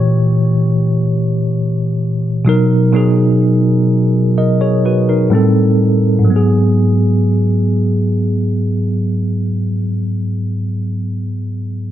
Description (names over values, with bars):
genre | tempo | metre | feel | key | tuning
R&B | 63 BPM | 4/4 | straight | G# minor | A4 = 440 Hz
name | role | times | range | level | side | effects
bell-like tine electric piano | solo | 0.0-11.9 s | G#2 to D#5 | -12 LUFS | equal | fast stereo tremolo
room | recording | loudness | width
moderate lush hall reverb, RT60 2.5 s | low-pass filter | -12 LUFS | side -12 dB against mid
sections
0.0-6.3 A section; 6.3-10.1 B section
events
filter sweep 0.0-6.3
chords
0.0 A#dim7; 2.5 Bmaj7; 5.3 Am7; 6.3 G#m7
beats
0.56 1.51 | 2.47 3.42 4.37 5.32 | 6.28 7.23 8.18 9.13